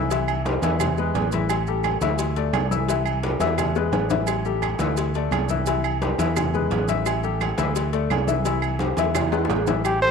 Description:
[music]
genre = latin, salsa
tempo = 172 BPM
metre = 4/4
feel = straight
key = unclear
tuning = A4 = 440 Hz
[part]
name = clear concert grand piano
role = accompaniment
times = 0.0-10.1 s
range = E3 to E5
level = -25 LUFS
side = left 11 dB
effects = none
[part]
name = fingered electric bass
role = bass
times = 0.0-10.1 s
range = A1 to E2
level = -26 LUFS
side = right 2 dB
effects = none
[part]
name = agogo bells and timbales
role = percussion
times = 0.1-10.0 s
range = none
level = -28 LUFS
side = right 13 dB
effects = none
[part]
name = congas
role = percussion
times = 0.1-10.1 s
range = none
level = -30 LUFS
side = right 2 dB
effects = none
[part]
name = cowbell and bongos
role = percussion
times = 0.1-10.0 s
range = none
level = -31 LUFS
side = left 11 dB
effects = none
[part]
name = maracas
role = percussion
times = 0.1-10.1 s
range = none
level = -39 LUFS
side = right 13 dB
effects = none
[part]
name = claves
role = percussion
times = 0.3-10.0 s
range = none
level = -34 LUFS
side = right 14 dB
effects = none
[part]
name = warm trumpet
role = melody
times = 9.9-10.1 s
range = G4 to C5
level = -18 LUFS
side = right 1 dB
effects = none
[sound]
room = moderate plate reverb, RT60 2.8 s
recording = 1960s-style stereo with parts hard left and right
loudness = -20 LUFS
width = side -6 dB against mid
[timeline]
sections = 0.0-9.8 A section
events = drum fill 3.8-4.3, 9.2-9.8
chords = 0.1 C; 0.8 E; 1.5 A5; 2.2 Dsus2; 2.9 C; 3.6 E; 4.3 A5; 5.0 Dsus2; 5.7 C; 6.4 E; 7.1 A5; 7.8 Dsus2; 8.5 C; 9.2 E

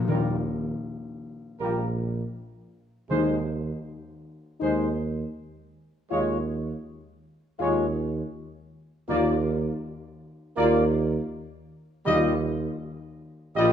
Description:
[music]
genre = classical, ceremonial fanfare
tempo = 80 BPM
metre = 4/4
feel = straight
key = Eb major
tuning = A4 = 440 Hz
[part]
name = dark French horn section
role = sustained chords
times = 0.0-13.7 s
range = Eb4 to F4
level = -29 LUFS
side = left 6 dB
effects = none
[part]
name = timpani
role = percussion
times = 0.0-4.2, 9.1-13.2 s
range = Eb3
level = -31 LUFS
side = left 1 dB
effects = none
[part]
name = dark trumpet section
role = melody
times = 0.1-13.7 s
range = Bb4 to Eb5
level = -29 LUFS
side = right 2 dB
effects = none
[part]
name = warm trombone section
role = sustained chords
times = 0.1-13.7 s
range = G3 to Bb3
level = -31 LUFS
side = right 2 dB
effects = none
[part]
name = mellow tuba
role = bass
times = 0.1-13.7 s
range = Bb1 to Eb2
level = -28 LUFS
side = right 3 dB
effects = none
[sound]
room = wet recital hall reverb, RT60 1.6 s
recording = minimal, uncompressed stereo recording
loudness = -24 LUFS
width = side -9 dB against mid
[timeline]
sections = 0.1-13.7 A section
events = none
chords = 0.1 Ebadd9; 3.1 Ab5/Eb; 6.1 Db/Eb (rootless); 9.1 Bb5/Eb; 12.1 Ebadd9

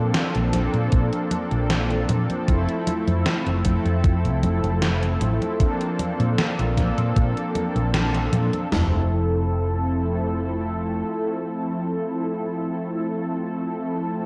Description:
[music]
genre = vaporwave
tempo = 77 BPM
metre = 4/4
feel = straight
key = F major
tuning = A4 = 440 Hz
[part]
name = mellow synth brass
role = accompaniment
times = 0.0-14.3 s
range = F3 to A4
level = -27 LUFS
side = equal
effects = lush chorus, tape echo
[part]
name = hollow-body short-scale fingered electric bass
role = bass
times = 0.0-11.0 s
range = F1 to Bb2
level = -26 LUFS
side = equal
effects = none
[part]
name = gated 80s digital drum machine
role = drums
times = 0.1-8.7 s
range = congas, hi-hat, snare drum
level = -29 LUFS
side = equal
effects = gated reverb, gated reverb snare
[part]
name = gated 80s digital drum machine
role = drums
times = 0.9-8.9 s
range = hi-hat, kick drum, snare drum, toms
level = -23 LUFS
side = equal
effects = gated reverb, gated reverb snare
[sound]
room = light reverb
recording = cassette tape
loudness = -23 LUFS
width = mono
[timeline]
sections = 0.0-8.7 A section; 8.7-11.8 B section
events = band accent 7.9-8.3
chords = 0.0 Bbmaj9; 2.5 Fmaj7; 5.6 Bbmaj9; 8.7 Fmaj7

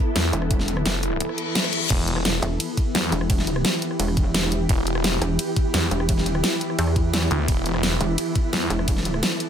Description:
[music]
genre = dark technical drum and bass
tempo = 172 BPM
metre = 4/4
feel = straight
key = E minor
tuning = A4 = 440 Hz
[part]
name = swarming drone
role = sustained chords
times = 0.0-9.5 s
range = E3 to A4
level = -27 LUFS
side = right 1 dB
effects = built-in reverb, sidechain pumping
[part]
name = snarling distorted saw bass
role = bass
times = 0.2-8.7 s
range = E1 to E2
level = -24 LUFS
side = equal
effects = distortion, tube saturation
[part]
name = dubstep drum kit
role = drums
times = 0.2-9.5 s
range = crash cymbal, hi-hat, ride cymbal, rim click, snare drum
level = -25 LUFS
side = equal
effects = none
[part]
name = pulsing pluck wobble bass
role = bass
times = 0.3-9.2 s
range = E1 to E2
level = -23 LUFS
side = equal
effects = chorus
[part]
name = electronic kick drum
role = drums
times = 0.5-8.9 s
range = none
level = -22 LUFS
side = equal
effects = none
[part]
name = reverse cymbal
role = sound effects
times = 1.3-1.9 s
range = none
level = -26 LUFS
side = left 7 dB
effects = none
[sound]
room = digital ambience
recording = none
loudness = -20 LUFS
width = side -8 dB against mid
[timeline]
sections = 0.0-9.5 A section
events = reverse cymbal 1.3-1.9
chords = 0.0 Em

